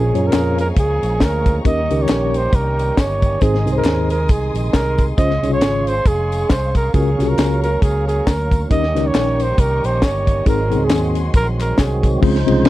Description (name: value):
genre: uptempo gospel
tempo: 136 BPM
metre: 4/4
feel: swing 57% on 8ths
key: unclear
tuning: A4 = 443 Hz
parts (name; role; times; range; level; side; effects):
- breathy trumpet; melody; 0.0-12.1 s; Ab4 to Eb5; -21 LUFS; right 2 dB; none
- mellow tine electric piano; accompaniment; 0.0-12.7 s; Ab2 to Db5; -19 LUFS; left 2 dB; medium stereo tremolo
- tonewheel organ; sustained chords; 0.0-12.7 s; C3 to C5; -26 LUFS; right 3 dB; fast rotary speaker, overdrive
- warm studio string section; sustained chords; 0.0-12.2 s; Db5 to Eb6; -33 LUFS; left 3 dB; none
- fingered electric bass; bass; 0.0-12.7 s; F1 to Gb2; -20 LUFS; equal; none
- tight funk drum kit; drums; 0.1-12.7 s; crash cymbal, hi-hat, kick drum, ride cymbal, snare drum; -16 LUFS; equal; none
- tambourine and handclaps; percussion; 0.2-12.1 s; none; -38 LUFS; left 5 dB; none
room: light reverb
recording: none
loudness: -14 LUFS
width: side -16 dB against mid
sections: 0.0-12.2 A section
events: none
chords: 0.0 Bbm7; 1.7 Eb7; 3.4 Ab; 5.2 Dbmaj7; 6.9 Gbmaj7; 8.7 Eb7; 10.5 Ab7